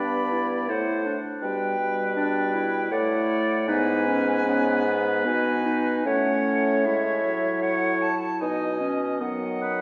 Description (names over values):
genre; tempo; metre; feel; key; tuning
classical, slow romantic movement for wind quintet; 77 BPM; 3/4; uneven beats, rubato; unclear; A4 = 440 Hz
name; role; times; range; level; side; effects
silver concert flute; melody; 0.0-9.8 s; E5 to B5; -34 LUFS; equal; none
warm oboe; second line; 0.0-9.8 s; B4 to D#5; -31 LUFS; equal; none
mellow clarinet; accompaniment; 0.0-9.7 s; B3 to E4; -31 LUFS; equal; none
warm French horn; accompaniment; 0.0-9.8 s; F#3 to C#4; -34 LUFS; equal; none
mellow bassoon; bass; 0.0-9.8 s; G2 to D#3; -29 LUFS; equal; none
room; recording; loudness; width
wet scoring stage reverb, RT60 1.7 s; recorded in a church or concert hall; -24 LUFS; mono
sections
0.0-9.8 A section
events
none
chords
0.0 G; 1.4 G/B; 3.7 G#m; 6.1 F#m/A; 8.4 Badd9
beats
0.70 | 1.43 2.17 2.92 | 3.68 4.46 5.25 | 6.06 6.86 7.63 | 8.42 9.21